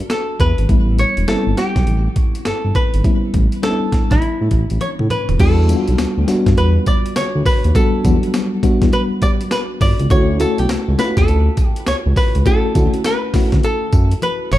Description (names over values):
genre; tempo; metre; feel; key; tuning
R&B, new jack swing; 102 BPM; 4/4; swing 63% on 16ths; E dorian; A4 = 439 Hz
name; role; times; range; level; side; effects
archtop guitar, miked and amplified; melody; 0.0-14.6 s; E4 to D5; -21 LUFS; left 1 dB; digital delay
FM electric piano with auto-pan; accompaniment; 0.0-14.6 s; F#3 to F#4; -20 LUFS; left 2 dB; none
smooth synth bass; bass; 0.0-14.6 s; D#1 to A2; -17 LUFS; equal; none
breakbeat sampler-style drum kit; drums; 0.0-14.6 s; crash cymbal, hi-hat, kick drum, snare drum, tambourine, toms; -17 LUFS; equal; none
room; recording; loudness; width
light reverb; dark, warm production; -13 LUFS; side -14 dB against mid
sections
0.0-5.4 A section; 5.4-14.6 B section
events
drum fill 4.8-5.4, 14.2-14.6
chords
0.0 Em7; 0.7 A7; 5.4 Em7; 10.1 Dmaj7